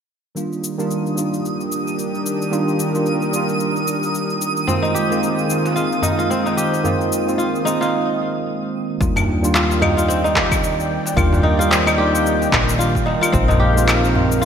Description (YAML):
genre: organic downtempo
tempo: 111 BPM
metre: 4/4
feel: swing 58% on 16ths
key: unclear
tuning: A4 = 440 Hz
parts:
  - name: tine electric piano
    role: accompaniment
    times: 0.3-14.4 s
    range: Eb3 to D5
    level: -21 LUFS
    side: right 2 dB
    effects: overdrive, analog chorus, sidechain pumping, low-pass filter, digital delay
  - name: warm analog pad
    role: sustained chords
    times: 0.4-14.4 s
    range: Eb3 to G5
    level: -26 LUFS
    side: left 1 dB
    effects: chorus, sidechain pumping
  - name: electronic cabasa, claves and handclaps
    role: drums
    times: 0.4-14.4 s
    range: none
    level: -22 LUFS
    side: left 2 dB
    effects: overdrive, gated reverb
  - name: twinkling granular texture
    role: texture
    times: 0.9-7.9 s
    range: Eb6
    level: -28 LUFS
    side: right 2 dB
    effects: built-in reverb, wide subtle chorus
  - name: kora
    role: arpeggios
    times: 4.7-14.4 s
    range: C4 to G4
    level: -21 LUFS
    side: equal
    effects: digital delay
  - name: darbuka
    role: percussion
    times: 4.7-14.3 s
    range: none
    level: -27 LUFS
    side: equal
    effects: none
  - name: upright bass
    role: bass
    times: 9.0-14.4 s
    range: Bb1 to Eb2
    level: -20 LUFS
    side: left 1 dB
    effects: sidechain pumping
  - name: electronic kick drum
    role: drums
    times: 9.0-13.5 s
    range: none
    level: -22 LUFS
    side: left 1 dB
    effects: overdrive
room: wet lush hall reverb, RT60 2.6 s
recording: bright 1980s-style digital production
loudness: -16 LUFS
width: side -7 dB against mid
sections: 0.4-9.0 A section; 9.0-14.4 B section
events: filter sweep on tine electric piano 0.4-9.0; break 7.9-9.0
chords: 0.4 Ebmaj7; 4.7 Bb7sus4; 9.0 Ebmaj7; 13.3 Bb7sus4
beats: | 0.36 0.90 1.44 1.98 | 2.52 3.06 3.60 4.14 | 4.68 5.23 5.77 6.31 | 6.85 7.39 7.93 8.47 | 9.01 9.55 10.09 10.63 | 11.17 11.71 12.25 12.79 | 13.33 13.87 14.41